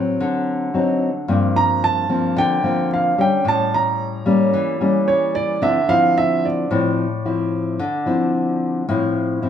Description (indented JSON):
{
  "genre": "bossa nova",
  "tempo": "111 BPM",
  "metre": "4/4",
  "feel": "straight",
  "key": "D minor",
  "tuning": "A4 = 440 Hz",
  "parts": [
    { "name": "nylon-string guitar", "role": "accompaniment", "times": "0.0-9.5 s", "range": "G2 to E4", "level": "-18 LUFS", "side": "left 2 dB", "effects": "none" },
    { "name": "warm grand piano", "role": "melody", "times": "1.6-9.4 s", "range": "C#5 to Bb5", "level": "-19 LUFS", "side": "right 4 dB", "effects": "none" }
  ],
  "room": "moderate large studio reverb, RT60 1.1 s",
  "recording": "band playing live in one room",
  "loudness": "-16 LUFS",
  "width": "side -9 dB against mid",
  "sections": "0.0-9.5 A section",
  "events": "none",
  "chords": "0.2 D7b9; 1.3 Gm11; 3.4 A7b9; 5.6 Dm9",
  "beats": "0.19 0.73 | 1.28 1.82 2.36 2.90 | 3.45 3.99 4.53 5.07 | 5.62 6.16 6.70 7.25 | 7.79 8.33 8.87 9.42"
}